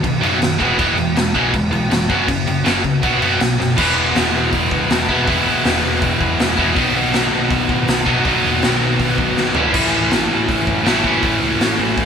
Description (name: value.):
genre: punk rock.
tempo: 161 BPM.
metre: 4/4.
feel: straight.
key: E major.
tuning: A4 = 440 Hz.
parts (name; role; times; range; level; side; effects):
distorted electric guitar; riff; 0.0-12.1 s; F#2 to E4; -16 LUFS; equal; distortion.
overdriven picked electric bass; bass; 0.0-12.1 s; E1 to A2; -26 LUFS; equal; none.
raw garage drum kit; drums; 0.0-12.1 s; crash cymbal, hi-hat, kick drum, snare drum, toms; -19 LUFS; equal; none.
room: light reverb.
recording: band playing live in one room.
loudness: -14 LUFS.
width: side -7 dB against mid.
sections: 0.0-3.8 A section; 3.8-12.1 B section.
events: drum fill 3.6, 9.4-9.7.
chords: 0.0 B; 0.6 E; 2.1 F#5; 3.0 B5; 3.8 E; 6.8 B; 9.6 A.